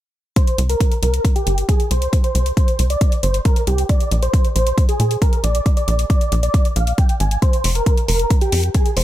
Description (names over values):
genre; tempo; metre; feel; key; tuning
uplifting trance; 136 BPM; 4/4; straight; unclear; A4 = 440 Hz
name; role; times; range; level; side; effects
big supersaw lead; melody; 0.4-9.0 s; G4 to Ab5; -22 LUFS; right 1 dB; sidechain pumping, low-pass filter, ping-pong delay
electronic hi-hat; drums; 0.4-9.0 s; none; -28 LUFS; left 2 dB; none
electronic kick drum; drums; 0.4-8.8 s; none; -15 LUFS; equal; none
tight sequencer bass; bass; 0.6-9.0 s; F1 to Bb2; -17 LUFS; equal; sidechain pumping
room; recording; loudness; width
little or no reverb; none; -15 LUFS; side -13 dB against mid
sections
0.4-9.0 A section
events
none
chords
0.4 C5; 3.9 Abadd9(#11); 7.4 Fmadd11